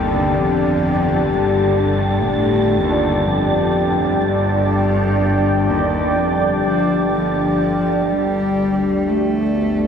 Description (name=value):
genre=dark ambient drone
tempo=62 BPM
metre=4/4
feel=straight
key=unclear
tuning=A4 = 439 Hz
part: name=dark cello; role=melody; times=0.0-9.9 s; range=Eb2 to A3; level=-20 LUFS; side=equal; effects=analog delay
part: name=deep dark ambient pad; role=sustained chords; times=0.0-9.9 s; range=D4 to G5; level=-18 LUFS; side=left 1 dB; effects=chorus, built-in reverb
part: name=carillon bells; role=arpeggios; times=0.0-8.7 s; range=C3 to D4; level=-30 LUFS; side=left 2 dB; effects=none
part: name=bowed-like drone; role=drone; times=0.0-9.9 s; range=G1 to D3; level=-23 LUFS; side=equal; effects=built-in reverb
part: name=wind-like tuned noise texture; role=texture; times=0.0-8.1 s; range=A5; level=-30 LUFS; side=left 1 dB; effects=built-in reverb
room=wet plate reverb, RT60 3.3 s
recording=dreamy mix soaked in reverb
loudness=-15 LUFS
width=side -7 dB against mid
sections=0.0-8.1 A section; 8.1-9.9 B section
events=none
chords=0.0 G5; 8.1 G7sus2